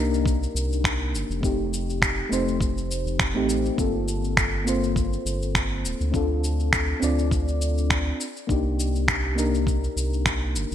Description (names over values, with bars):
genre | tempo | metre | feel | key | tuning
sunset chillout | 102 BPM | 4/4 | swing 55% on 16ths | unclear | A4 = 439 Hz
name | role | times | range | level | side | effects
mellow FM electric piano | accompaniment | 0.0-10.7 s | A3 to D5 | -26 LUFS | moving between left 6 dB and right 1 dB | chorus, auto-pan, ping-pong delay
round analog bass | bass | 0.0-10.7 s | D1 to D2 | -26 LUFS | equal | none
electronic shaker and finger snaps | drums | 0.1-10.7 s | none | -26 LUFS | equal | gated reverb
electronic kick drum | drums | 0.3-10.4 s | none | -27 LUFS | equal | none
room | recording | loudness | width
light reverb, digital ambience | bright 1980s-style digital production | -22 LUFS | side -10 dB against mid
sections
0.0-10.7 A section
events
none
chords
0.0 Cm7; 1.4 F9; 3.8 Gm11; 6.1 Dm7; 8.2 Cm7